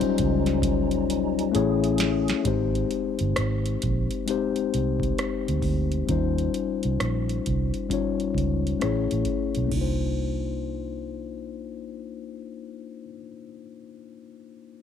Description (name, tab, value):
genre	R&B, neo-soul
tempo	66 BPM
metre	4/4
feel	swing 64% on 16ths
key	C minor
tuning	A4 = 440 Hz
part	clean electric guitar	melody	0.0-1.5 s	none	barely audible	none	none
part	mellow tine electric piano	accompaniment	0.0-14.8 s	F#3 to C#5	-27 LUFS	left 9 dB	slow stereo tremolo
part	percussive tonewheel organ	sustained chords	0.0-2.4 s	G3 to G#4	-33 LUFS	right 13 dB	slow rotary speaker, chorus vibrato
part	vintage muted fingered electric bass	bass	0.0-13.1 s	G1 to Eb2	-27 LUFS	right 2 dB	none
part	booming analog drum machine	drums	0.0-10.0 s	crash cymbal, hi-hat, kick drum, rim click, snare drum	-31 LUFS	right 2 dB	none
room	light reverb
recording	1960s-style stereo with parts hard left and right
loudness	-23 LUFS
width	side -8 dB against mid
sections	0.0-2.4 A section; 2.4-9.7 B section; 9.7-13.4 C section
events	drum fill 1.5-2.4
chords	0.0 Eb13; 1.5 Amaj7; 2.4 Abmaj7; 6.1 Eb13; 8.8 Amaj7; 9.7 Cm11